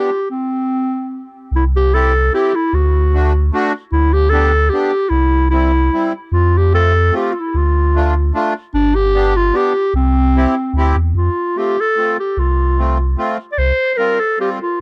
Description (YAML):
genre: alpine folk, alpine dance band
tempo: 149 BPM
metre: 3/4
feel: swing 53% on 8ths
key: C major, F major from 11.2 s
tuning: A4 = 439 Hz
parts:
  - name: mellow clarinet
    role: melody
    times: 0.0-14.8 s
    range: C4 to D5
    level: -19 LUFS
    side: equal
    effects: tape echo
  - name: accordion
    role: accompaniment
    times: 0.0-14.6 s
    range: G3 to G4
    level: -22 LUFS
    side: equal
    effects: none
  - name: pure sine sub bass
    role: bass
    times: 1.5-13.7 s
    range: G1 to F2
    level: -17 LUFS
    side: equal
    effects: none
room: little or no reverb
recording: dry, gritty hardware recording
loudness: -15 LUFS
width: mono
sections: 0.0-1.5 A section; 1.5-11.2 A section; 11.2-14.8 B section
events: stop 0.3-1.5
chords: 0.3 N.C.; 1.5 C; 2.7 D; 3.9 G/D; 5.1 C; 6.3 F; 7.5 Dm; 8.7 G; 9.9 C; 11.2 F; 13.6 Csus4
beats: | 0.31 0.71 1.12 | 1.52 1.93 2.33 | 2.73 3.13 3.53 | 3.93 4.32 4.72 | 5.12 5.52 5.93 | 6.33 6.74 7.14 | 7.54 7.94 8.34 | 8.74 9.14 9.54 | 9.94 10.35 10.75 | 11.16 11.57 11.98 | 12.38 12.79 13.19 | 13.59 13.99 14.39